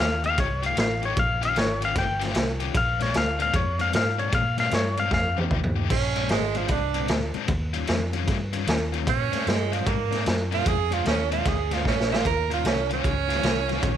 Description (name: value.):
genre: electric blues shuffle.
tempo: 152 BPM.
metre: 4/4.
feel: swing 64% on 8ths.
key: unclear.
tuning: A4 = 440 Hz.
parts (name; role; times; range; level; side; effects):
clean lap steel guitar; melody; 0.0-5.4 s; Db5 to G5; -25 LUFS; left 3 dB; none.
overdriven electric guitar; riff; 0.0-13.9 s; Bb2 to G4; -31 LUFS; left 12 dB; harmonic tremolo.
vintage muted fingered electric bass; bass; 0.0-14.0 s; G1 to Bb2; -28 LUFS; equal; none.
raw garage drum kit; drums; 0.0-13.9 s; crash cymbal, kick drum, ride cymbal, snare drum, toms; -26 LUFS; equal; none.
edgy tenor saxophone; second line; 5.9-14.0 s; F3 to Bb4; -26 LUFS; right 10 dB; none.
room: light reverb, studio reverb.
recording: 1960s-style stereo with parts hard left and right.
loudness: -22 LUFS.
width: side -10 dB against mid.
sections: 0.0-5.9 A section; 5.9-14.0 A section.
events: electric slide guitar solo 0.0-5.9; drum fill 5.1-5.9, 11.8-12.2; tenor saxophone solo 5.9-14.0.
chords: 0.0 F9; 1.2 Eb9; 2.8 Bb9; 5.1 F9; 5.9 Bb9; 7.5 Eb9; 9.1 Bb9; 12.2 Eb9.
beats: 0.38 0.78 | 1.17 1.57 1.96 2.36 | 2.75 3.15 3.54 3.94 | 4.33 4.72 5.12 5.51 | 5.91 6.31 6.70 7.10 | 7.49 7.89 8.28 8.68 | 9.08 9.47 9.87 10.26 | 10.66 11.06 11.45 11.85 | 12.24 12.64 13.04 13.43 | 13.83.